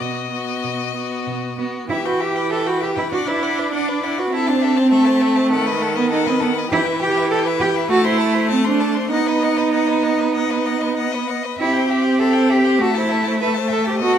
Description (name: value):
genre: quick classical-period movement for string quartet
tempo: 98 BPM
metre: 4/4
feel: straight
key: unclear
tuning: A4 = 440 Hz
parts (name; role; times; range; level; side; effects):
- rich violin; melody; 0.0-14.2 s; D5 to C6; -27 LUFS; left 10 dB; none
- rich violin; second line; 0.0-14.2 s; F#4 to D#5; -25 LUFS; left 4 dB; none
- clear viola; accompaniment; 0.0-14.2 s; D#3 to D4; -20 LUFS; right 1 dB; none
- rich cello; bass; 0.0-14.2 s; B2 to B4; -20 LUFS; right 3 dB; none
room: wet recital hall reverb, RT60 1.3 s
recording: none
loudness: -16 LUFS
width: side -9 dB against mid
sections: 0.0-1.9 A section; 1.9-14.2 B section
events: none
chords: 0.0 B; 1.9 Em; 3.1 Bm/D; 4.3 Am/C; 5.5 B7/D#; 6.7 Em; 7.9 Am; 9.1 B; 11.6 C; 12.8 Am